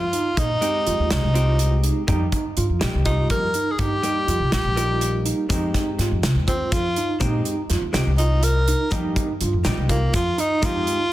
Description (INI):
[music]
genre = progressive instrumental, band music in an uneven meter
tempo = 246 BPM (eighths)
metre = 7/8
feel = straight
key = unclear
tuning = A4 = 440 Hz
[part]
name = bright tenor saxophone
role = melody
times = 0.0-11.1 s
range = Bb3 to Bb4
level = -24 LUFS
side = equal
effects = none
[part]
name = mellow tine electric piano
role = arpeggios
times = 0.0-11.0 s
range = Eb4 to F4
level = -28 LUFS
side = right 5 dB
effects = medium tremolo, tape echo
[part]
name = upright bass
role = bass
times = 0.0-10.8 s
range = Bb1 to Bb2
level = -22 LUFS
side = equal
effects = none
[part]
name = modern studio drum kit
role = drums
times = 0.1-11.0 s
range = hi-hat, kick drum, snare drum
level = -26 LUFS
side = equal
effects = soft clipping on kick
[part]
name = vintage hollow-body jazz guitar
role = accompaniment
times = 0.6-11.0 s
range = G3 to Bb4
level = -30 LUFS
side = left 2 dB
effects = none
[part]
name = egg shaker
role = percussion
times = 5.5-10.9 s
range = none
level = -39 LUFS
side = left 6 dB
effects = none
[sound]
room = light reverb, small room ambience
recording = dense, heavily limited modern master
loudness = -19 LUFS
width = side -15 dB against mid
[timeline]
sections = 0.0-11.1 A section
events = none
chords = 0.0 Fm7; 2.1 Eb; 5.5 Fm7; 8.9 Eb